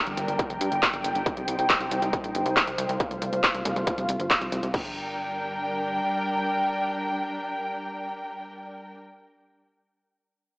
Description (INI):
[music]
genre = uplifting trance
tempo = 138 BPM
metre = 4/4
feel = straight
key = G minor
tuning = A4 = 439 Hz
[part]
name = warm studio string section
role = sustained chords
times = 0.0-9.0 s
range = G3 to G5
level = -28 LUFS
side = equal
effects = sidechain pumping, low-pass filter
[part]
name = plucky analog bass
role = bass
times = 0.1-6.0 s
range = F1 to G2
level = -32 LUFS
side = equal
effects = sidechain pumping
[part]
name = techno drum kit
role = drums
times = 0.1-4.8 s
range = crash cymbal, handclaps, hi-hat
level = -26 LUFS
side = equal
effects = overdrive, sidechain pumping on hats, sidechain pumping on cymbals
[part]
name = electronic kick drum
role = drums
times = 0.4-4.8 s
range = none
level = -29 LUFS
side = equal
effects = distortion, overdrive
[sound]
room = moderate lush hall reverb, RT60 2.0 s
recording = AM radio sound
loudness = -24 LUFS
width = side -33 dB against mid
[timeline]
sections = 0.0-4.7 A section; 4.7-8.2 B section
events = filter sweep on string section 0.0-4.7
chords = 0.0 Gm; 1.3 Cm; 3.0 F/C; 4.7 Gm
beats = 0.39 0.83 | 1.26 1.70 2.13 2.57 | 3.00 3.44 3.87 4.30 | 4.74 5.17 5.61 6.04 | 6.48 6.91 7.35 7.78